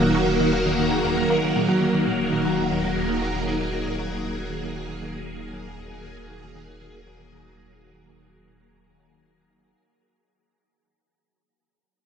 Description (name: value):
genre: ambient, sequencer-driven space music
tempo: 117 BPM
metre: 4/4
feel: straight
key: Eb minor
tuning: A4 = 442 Hz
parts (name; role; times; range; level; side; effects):
- phased string machine; sustained chords; 0.0-9.8 s; Eb3 to A#4; -23 LUFS; equal; ensemble chorus, phaser
- vibraphone with medium hard mallets; arpeggios; 0.0-9.7 s; Eb4 to Bb4; -29 LUFS; equal; auto-pan, tape echo
- tight sequenced synth; riff; 0.0-9.7 s; Eb2 to Bb3; -29 LUFS; equal; chorus, phaser, tape echo
- warm sub bass; bass; 0.0-9.7 s; Eb1; -36 LUFS; equal; none
room: wet huge ambient reverb, RT60 9.1 s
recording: none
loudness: -21 LUFS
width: side -7 dB against mid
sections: 0.0-9.8 A section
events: fade-out on synth arpeggio sound 0.0-9.8; fade-out on vibraphone 0.0-9.8; fade-out 0.0-9.8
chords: 0.0 Ebm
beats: 0.02 0.53 1.04 | 1.56 2.07 2.58 3.09 | 3.61 4.12 4.63 5.14 | 5.66 6.17 6.68 7.20 | 7.71 8.22 8.73 9.25